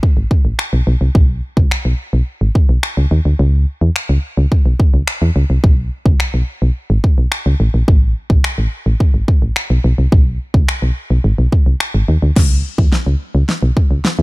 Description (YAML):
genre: dance-pop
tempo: 107 BPM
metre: 4/4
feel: straight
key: unclear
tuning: A4 = 440 Hz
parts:
  - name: pop drum kit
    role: drums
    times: 0.0-14.2 s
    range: crash cymbal, finger snaps, kick drum, snare drum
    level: -13 LUFS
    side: equal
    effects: none
  - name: solid FM bass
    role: bass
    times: 0.2-14.2 s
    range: G#1 to E2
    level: -14 LUFS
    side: equal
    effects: sidechain pumping
room: digital ambience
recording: dark, warm production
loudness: -12 LUFS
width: side -22 dB against mid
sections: 0.0-12.4 A section; 12.4-14.2 B section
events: kick muted 3.4-4.5; build-up 12.4-14.2; drum fill 12.4-14.2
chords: none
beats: 0.03 0.59 | 1.15 1.71 2.27 2.83 | 3.39 3.96 4.51 5.08 | 5.64 6.20 6.76 7.32 | 7.88 8.44 9.00 9.56 | 10.12 10.68 11.24 11.80 | 12.37 12.93 13.49 14.05